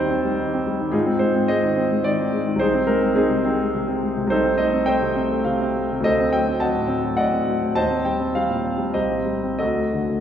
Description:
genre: classical, romantic character piece for solo piano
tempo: 88-111 BPM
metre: 3/4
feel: rubato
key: unclear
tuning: A4 = 440 Hz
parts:
  - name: clear grand piano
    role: solo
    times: 0.0-10.2 s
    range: C2 to A5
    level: -19 LUFS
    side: equal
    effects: none
room: wet concert hall reverb, RT60 2.1 s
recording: heard from further back in the room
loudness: -19 LUFS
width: side -9 dB against mid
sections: 0.0-10.2 A section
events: none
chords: 0.0 Cm/Eb; 0.9 Ab6; 2.6 Ab/C; 4.3 Adim/C; 6.0 D7b9; 7.8 Eb6; 8.9 Cm; 9.6 D

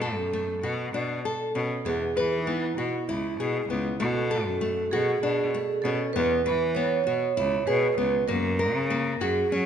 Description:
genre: contemporary instrumental, chamber music in an uneven meter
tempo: 196 BPM (eighths)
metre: 7/8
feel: straight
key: B dorian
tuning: A4 = 439 Hz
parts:
  - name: nylon-string guitar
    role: arpeggios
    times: 0.0-9.7 s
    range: A3 to B4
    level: -29 LUFS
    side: left 3 dB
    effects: none
  - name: rich cello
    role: bass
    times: 0.0-9.7 s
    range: C#2 to F#3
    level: -29 LUFS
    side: left 1 dB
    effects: none
  - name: vibraphone with medium mallets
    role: second line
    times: 1.9-9.7 s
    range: D#4 to C#5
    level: -27 LUFS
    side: right 6 dB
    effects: none
room: moderate scoring stage reverb, RT60 1.8 s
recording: nothing above 11.0 kHz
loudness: -24 LUFS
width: side -8 dB against mid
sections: 0.0-9.7 A section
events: none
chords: 0.0 Bm7; 1.9 E; 4.0 B7(no3); 6.1 E5; 8.3 F#add9

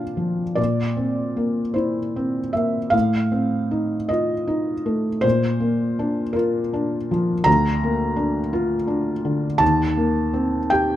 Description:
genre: classical, romantic nocturne for solo piano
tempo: 49-57 BPM (dotted quarters)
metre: 6/8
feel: rubato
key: Bb major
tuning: A4 = 440 Hz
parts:
  - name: felt-muted upright piano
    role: solo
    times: 0.0-11.0 s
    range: D2 to Bb5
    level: -19 LUFS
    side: equal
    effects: none
room: light reverb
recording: close, detailed microphones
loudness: -19 LUFS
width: side -12 dB against mid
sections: 0.0-11.0 A section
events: none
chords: 0.0 Bb; 0.6 C7/Bb; 2.9 F7/A; 5.2 Bb; 7.5 Bb/D; 9.6 Cm7/Eb

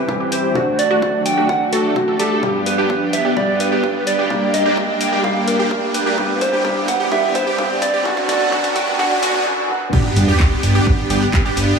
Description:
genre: EDM, festival progressive house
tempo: 128 BPM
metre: 4/4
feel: straight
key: G major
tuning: A4 = 441 Hz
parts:
  - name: soft struck synth lead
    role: melody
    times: 0.0-9.2 s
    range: F#4 to G5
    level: -20 LUFS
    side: right 2 dB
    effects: chorus, tape echo
  - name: felt-muted upright piano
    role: accompaniment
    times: 0.0-10.0 s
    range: F#2 to G4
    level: -24 LUFS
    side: left 5 dB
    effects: sidechain pumping, tape echo
  - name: lush unison pad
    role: sustained chords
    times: 0.0-11.8 s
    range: D3 to A4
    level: -28 LUFS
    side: right 1 dB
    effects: chorus, sidechain pumping
  - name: riser and sub drop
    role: sound effects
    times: 0.0-11.8 s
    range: none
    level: -26 LUFS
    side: right 2 dB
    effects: none
  - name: electronic kick drum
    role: drums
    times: 0.1-11.4 s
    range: none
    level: -21 LUFS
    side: equal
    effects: high-pass filter on kick, high-pass filter on room
  - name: wide unison pluck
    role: arpeggios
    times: 0.2-11.8 s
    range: F#4 to A4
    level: -25 LUFS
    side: right 2 dB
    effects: sidechain pumping, tape echo
  - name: supersaw chords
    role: riff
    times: 0.2-11.8 s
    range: A3 to A4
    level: -21 LUFS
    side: right 1 dB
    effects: sidechain pumping, low-pass filter, tape echo
  - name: house drum kit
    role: drums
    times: 0.3-11.7 s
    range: crash cymbal, handclaps, hi-hat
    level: -26 LUFS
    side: left 2 dB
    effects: none
  - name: fat analog bass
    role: bass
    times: 10.2-11.7 s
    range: G1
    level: -17 LUFS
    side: equal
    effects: tube saturation, sidechain pumping
room: moderate lush hall reverb, RT60 1.9 s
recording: high-pass filter, small room ambience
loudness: -15 LUFS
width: side -5 dB against mid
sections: 0.0-9.9 A section; 9.9-11.8 B section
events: build-up 0.0-9.9; riser 0.0-9.5; filter sweep on supersaw synth 0.0-9.9; filter sweep on synth pluck 0.0-9.9; filter sweep 0.0-9.9; drum fill 2.4-9.5; break 9.5-9.9; drop 9.9-11.8; impact 9.9-11.8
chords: 0.0 C; 0.6 D; 2.4 G; 4.3 Eb; 6.2 C; 8.1 D; 9.9 G

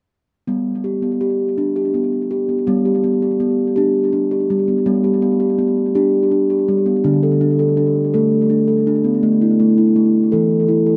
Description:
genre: world meditative, meditative tuned percussion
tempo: 55 BPM (dotted quarters)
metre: 6/8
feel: straight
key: G major pentatonic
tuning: A4 = 440 Hz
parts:
  - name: steel tongue drum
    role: solo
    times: 0.5-11.0 s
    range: D3 to A4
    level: -16 LUFS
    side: equal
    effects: tape echo
room: wet plate reverb, RT60 3.7 s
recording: echo-heavy mix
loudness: -16 LUFS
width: mono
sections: 0.5-2.7 A section; 2.7-11.0 B section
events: none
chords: 0.5 G; 7.0 D5; 9.2 A5

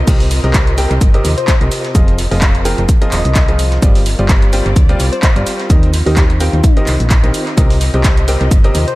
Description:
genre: piano house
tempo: 128 BPM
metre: 4/4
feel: swing 55% on 16ths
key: C minor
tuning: A4 = 440 Hz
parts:
  - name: solid FM bass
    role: bass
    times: 0.0-8.9 s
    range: Eb1 to Eb2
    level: -14 LUFS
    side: equal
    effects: sidechain pumping
  - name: muted studio string section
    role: texture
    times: 0.0-9.0 s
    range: C4 to Eb5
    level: -26 LUFS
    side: left 2 dB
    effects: sidechain pumping
  - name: clear grand piano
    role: riff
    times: 0.1-8.8 s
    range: C3 to G5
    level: -20 LUFS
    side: equal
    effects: sidechain pumping, dub echo
  - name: breakbeat sampler-style drum kit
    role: drums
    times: 0.1-9.0 s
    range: hi-hat, shaker, snare drum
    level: -30 LUFS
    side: right 1 dB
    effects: none
  - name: electronic kick drum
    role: drums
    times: 0.1-8.6 s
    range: none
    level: -11 LUFS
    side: equal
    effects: none
  - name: punchy analog drum machine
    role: drums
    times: 0.1-9.0 s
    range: crash cymbal, handclaps, hi-hat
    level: -21 LUFS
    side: equal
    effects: dub echo
  - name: soft struck synth lead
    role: melody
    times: 1.4-9.0 s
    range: F4 to Eb5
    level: -24 LUFS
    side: left 2 dB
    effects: chorus, phaser, dub echo
room: digital ambience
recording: echo-heavy mix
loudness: -10 LUFS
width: side -19 dB against mid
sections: 0.0-9.0 A section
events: none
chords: 0.1 Cm7; 2.0 Fm7; 3.8 G7sus4; 5.7 Eb6; 7.6 Cm7

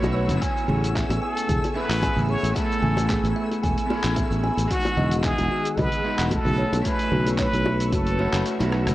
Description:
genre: sunset chillout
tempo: 112 BPM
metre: 4/4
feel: swing 54% on 16ths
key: A lydian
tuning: A4 = 440 Hz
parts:
  - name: trumpet with plunger mute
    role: melody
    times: 0.0-8.5 s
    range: F#4 to C#5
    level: -28 LUFS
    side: equal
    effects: digital delay
  - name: electric guitar at the edge of break-up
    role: accompaniment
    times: 0.0-8.9 s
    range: D#3 to G#5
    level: -28 LUFS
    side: equal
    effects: auto-pan, vintage 12-bit sampler grit
  - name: soft string machine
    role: sustained chords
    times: 0.0-8.9 s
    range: A3 to E6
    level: -34 LUFS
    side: equal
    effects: phaser, ensemble chorus
  - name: sustaining fretless electric bass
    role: bass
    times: 0.0-8.9 s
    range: E1 to B1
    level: -24 LUFS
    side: equal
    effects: none
  - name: dusty soul sampler-style drum kit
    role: drums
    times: 0.0-8.9 s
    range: congas, handclaps, hi-hat, rim click, shaker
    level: -30 LUFS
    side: right 1 dB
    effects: none
  - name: bongos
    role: percussion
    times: 0.0-8.7 s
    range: none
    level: -31 LUFS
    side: left 2 dB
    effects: none
  - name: twinkling granular texture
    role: texture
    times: 0.0-8.9 s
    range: E6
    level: -41 LUFS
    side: equal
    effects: built-in reverb
  - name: kalimba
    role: arpeggios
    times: 0.1-8.8 s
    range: F#4 to G#5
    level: -31 LUFS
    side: equal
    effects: ping-pong delay
  - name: electronic kick drum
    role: drums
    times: 0.4-8.0 s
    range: none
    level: -29 LUFS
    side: equal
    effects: overdrive
room: light reverb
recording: worn, warbling old tape, cassette tape, warbly pitch drift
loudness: -20 LUFS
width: side -16 dB against mid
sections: 0.0-8.9 A section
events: kick drops out 8.5-8.9; drum fill 8.7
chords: 0.4 Amaj7; 4.7 Emaj9; 6.6 B9sus4

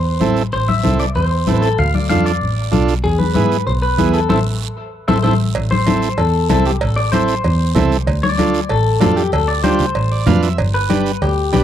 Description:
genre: latin, cumbia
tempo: 191 BPM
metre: 4/4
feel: straight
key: A harmonic minor, A minor from 5.6 s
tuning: A4 = 440 Hz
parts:
  - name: clean electric guitar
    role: melody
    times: 0.0-11.6 s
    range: G4 to F5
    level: -20 LUFS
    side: left 3 dB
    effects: spring reverb, tape echo
  - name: warm double bass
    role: bass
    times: 0.0-11.6 s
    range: G1 to G#2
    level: -18 LUFS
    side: equal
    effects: none
  - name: combo organ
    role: accompaniment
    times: 0.2-11.6 s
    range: B3 to F5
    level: -18 LUFS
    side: right 6 dB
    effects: none
  - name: congas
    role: percussion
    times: 0.2-11.6 s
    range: none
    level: -20 LUFS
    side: left 5 dB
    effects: none
  - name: guiro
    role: percussion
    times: 0.2-11.6 s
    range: none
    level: -32 LUFS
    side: right 16 dB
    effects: none
  - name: cowbell and timbales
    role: percussion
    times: 5.5-11.6 s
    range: none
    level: -24 LUFS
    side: right 8 dB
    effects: none
room: little or no reverb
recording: dry, close 1970s-style studio recording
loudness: -14 LUFS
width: side -10 dB against mid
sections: 0.0-5.6 A section; 5.6-11.6 B section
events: band accent 4.3-5.6; transistor combo organ fill 4.9-5.6, 10.0-10.6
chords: 0.0 Am; 1.8 Dm; 3.0 E; 4.3 Am; 8.1 Dm; 10.6 G

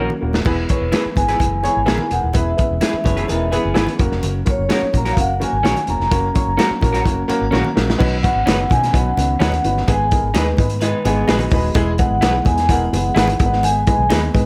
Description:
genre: uptempo 1960s-style soul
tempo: 128 BPM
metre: 4/4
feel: straight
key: unclear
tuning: A4 = 440 Hz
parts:
  - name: dark upright piano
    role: accompaniment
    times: 0.0-14.5 s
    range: G#3 to B5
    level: -25 LUFS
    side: equal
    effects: none
  - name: mellow tonewheel organ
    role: sustained chords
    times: 0.0-14.5 s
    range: D#3 to C#4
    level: -32 LUFS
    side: equal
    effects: none
  - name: electric guitar through a small old amp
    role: stabs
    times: 0.0-14.2 s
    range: C#4 to B4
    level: -28 LUFS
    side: equal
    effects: none
  - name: vintage muted fingered electric bass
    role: bass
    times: 0.0-14.5 s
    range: D#1 to B2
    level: -24 LUFS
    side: equal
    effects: none
  - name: congas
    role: percussion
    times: 0.1-14.4 s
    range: none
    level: -32 LUFS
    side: equal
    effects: none
  - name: crunchy breakbeat drum kit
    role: drums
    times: 0.3-14.5 s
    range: crash cymbal, hi-hat, kick drum, snare drum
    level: -22 LUFS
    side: equal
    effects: none
  - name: vibraphone with soft mallets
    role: melody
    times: 0.7-14.5 s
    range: B4 to A#5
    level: -23 LUFS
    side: equal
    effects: none
  - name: electric guitar through a small old amp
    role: riff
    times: 3.0-4.0, 10.8-11.7 s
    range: F#3 to C#5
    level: -30 LUFS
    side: equal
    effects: spring reverb
room: light reverb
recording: none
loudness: -17 LUFS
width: mono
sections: 0.5-8.0 A section; 8.0-14.5 B section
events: drum fill 0.0-0.5, 7.5-8.0; upright piano fill 10.8-11.8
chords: 0.5 E; 4.0 F#; 8.0 Badd9; 9.9 G#m; 11.8 E; 13.4 G#m

